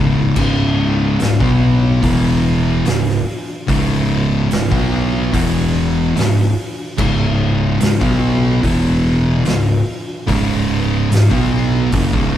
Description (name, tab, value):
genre	stoner and doom metal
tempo	73 BPM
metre	4/4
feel	straight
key	C# minor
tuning	A4 = 440 Hz
part	thick fuzz guitar	riff	0.0-12.4 s	C#2 to B3	-18 LUFS	left 5 dB	distortion
part	thick fuzz guitar	riff	0.0-12.4 s	C#2 to B3	-17 LUFS	right 5 dB	distortion
part	growling picked electric bass	bass	0.0-12.4 s	C#1 to B1	-20 LUFS	equal	overdrive
part	oversized low-tuned drum kit	drums	0.4-12.3 s	crash cymbal, hi-hat, kick drum, snare drum	-21 LUFS	equal	none
room	moderate studio ambience, RT60 0.5 s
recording	band playing live in one room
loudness	-13 LUFS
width	side -11 dB against mid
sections	0.0-12.4 A section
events	none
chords	0.0 C#5; 2.0 E5; 2.9 C#5; 5.3 E5; 6.2 C#5; 8.6 E5; 9.5 C#5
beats	| 0.37 1.20 2.03 2.85 | 3.68 4.51 5.33 6.16 | 6.98 7.81 8.63 9.46 | 10.28 11.10 11.93